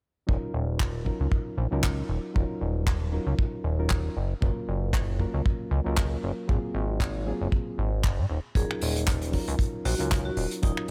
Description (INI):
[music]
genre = nu-disco, nu disco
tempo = 116 BPM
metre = 4/4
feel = swing 56% on 16ths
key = Eb dorian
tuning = A4 = 440 Hz
[part]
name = reed electric piano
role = accompaniment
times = 0.3-10.9 s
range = Gb3 to Bb4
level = -36 LUFS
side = equal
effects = none
[part]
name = chorused synth bass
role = bass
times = 0.3-10.7 s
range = Eb1 to Ab2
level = -30 LUFS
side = equal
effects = none
[part]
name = kick drum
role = drums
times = 0.3-10.7 s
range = none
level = -30 LUFS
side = equal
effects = none
[part]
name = unplugged drum kit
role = drums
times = 0.8-10.9 s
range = finger snaps, handclaps, hi-hat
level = -36 LUFS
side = equal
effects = none
[part]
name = vibraphone with medium hard mallets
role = melody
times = 8.6-10.8 s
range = Eb4 to Ab4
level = -38 LUFS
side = equal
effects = tape echo
[sound]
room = small room ambience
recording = none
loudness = -28 LUFS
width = mono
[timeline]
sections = 0.3-10.9 A section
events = none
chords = 0.3 Ebm9; 4.2 Gbmaj7; 6.5 Ab13; 8.6 Ebm9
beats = | 0.28 0.80 1.32 1.83 | 2.35 2.87 3.39 3.90 | 4.42 4.94 5.46 5.97 | 6.49 7.01 7.53 8.04 | 8.56 9.08 9.59 10.11 | 10.63